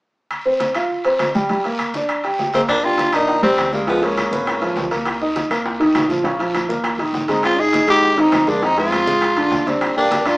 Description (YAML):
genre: Afro-Cuban jazz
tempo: 202 BPM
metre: 4/4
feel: straight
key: Eb major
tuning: A4 = 441 Hz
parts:
  - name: claves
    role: percussion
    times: 0.3-10.4 s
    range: none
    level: -32 LUFS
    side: equal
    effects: none
  - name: congas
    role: percussion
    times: 0.3-10.4 s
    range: none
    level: -32 LUFS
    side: equal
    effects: none
  - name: guiro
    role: percussion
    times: 0.3-10.4 s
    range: none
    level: -33 LUFS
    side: equal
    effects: none
  - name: timbales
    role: percussion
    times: 0.3-10.4 s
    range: none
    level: -25 LUFS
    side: equal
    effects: none
  - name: warm upright piano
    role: accompaniment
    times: 0.5-10.4 s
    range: Db3 to G5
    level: -19 LUFS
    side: equal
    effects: none
  - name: growling tenor saxophone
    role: melody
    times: 2.5-4.9, 7.3-10.4 s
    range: Bb3 to Ab4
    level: -18 LUFS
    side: equal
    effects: none
  - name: trombone with bucket mute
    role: second line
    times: 2.5-4.9, 7.3-10.4 s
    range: G3 to Eb4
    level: -24 LUFS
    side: equal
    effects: none
  - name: upright bass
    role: bass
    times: 2.7-10.4 s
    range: Ab1 to G2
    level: -35 LUFS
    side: equal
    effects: none
  - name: bongos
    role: percussion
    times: 2.7-10.3 s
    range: none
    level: -29 LUFS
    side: equal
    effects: none
room: wet studio reverb, RT60 0.6 s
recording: heard from further back in the room, small speaker sound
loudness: -15 LUFS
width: side -23 dB against mid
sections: 0.3-2.7 A section; 2.7-10.4 B section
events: none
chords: 0.3 Fsus2; 1.5 Gm; 2.7 Ebmaj9; 3.9 Db6; 5.1 Cm7; 6.2 Bbm; 6.8 Eb5; 7.4 Abmaj7; 8.6 Fm7; 9.2 Bb7; 9.8 Ebmaj7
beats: | 0.31 0.61 0.91 1.20 | 1.50 1.80 2.09 2.39 | 2.69 2.98 3.28 3.58 | 3.87 4.17 4.47 4.76 | 5.06 5.36 5.66 5.95 | 6.25 6.55 6.84 7.14 | 7.44 7.73 8.03 8.33 | 8.62 8.92 9.22 9.52 | 9.81 10.11